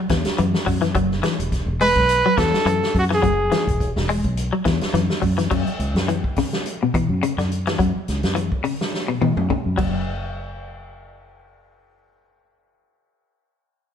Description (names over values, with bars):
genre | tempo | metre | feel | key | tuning
afrobeat | 105 BPM | 4/4 | swing 55% on 16ths | F# minor | A4 = 440 Hz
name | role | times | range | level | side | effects
clean electric guitar | arpeggios | 0.0-10.1 s | B2 to G#3 | -23 LUFS | left 4 dB | harmonic tremolo
fingered electric bass | bass | 0.1-12.8 s | E1 to E3 | -23 LUFS | equal | none
vintage drum kit | drums | 0.1-9.9 s | crash cymbal, hi-hat, kick drum, snare drum, toms | -25 LUFS | equal | none
clear trumpet | melody | 1.8-3.9 s | F#4 to B4 | -18 LUFS | right 1 dB | none
room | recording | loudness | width
moderate stone room reverb, RT60 1.3 s | band playing live in one room | -18 LUFS | side -8 dB against mid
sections
0.0-5.5 A section; 5.5-10.1 B section; 10.1-12.4 C section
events
drum fill 8.9-10.1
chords
0.0 F#7(no3); 5.5 F#5; 9.8 N.C.